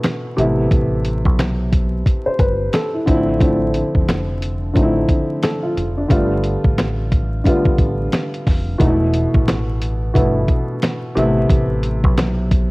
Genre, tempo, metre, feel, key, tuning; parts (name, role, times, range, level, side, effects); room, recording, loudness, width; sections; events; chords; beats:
hip hop, boom-bap hip-hop; 89 BPM; 4/4; swing 61% on 16ths; A minor; A4 = 436 Hz
dark upright piano; accompaniment; 0.0-12.7 s; B2 to C5; -19 LUFS; equal; cassette tape, high-pass filter, low-pass filter
dusty soul sampler-style drum kit; drums; 0.0-12.7 s; hi-hat, kick drum, snare drum; -17 LUFS; equal; cassette tape
deep dub fingered electric bass; bass; 0.4-12.7 s; E1 to B1; -21 LUFS; equal
little or no reverb; home recording on cassette, vinyl crackle; -15 LUFS; side -23 dB against mid
0.0-8.8 A section; 8.8-12.7 B section
0.4 Amadd9; 3.1 Dm7; 6.1 G7; 8.8 Esus4; 11.2 Amadd9
0.03 | 0.71 1.38 2.06 2.73 | 3.40 4.08 4.75 5.43 | 6.10 6.78 7.45 8.12 | 8.80 9.47 10.15 10.82 | 11.49 12.17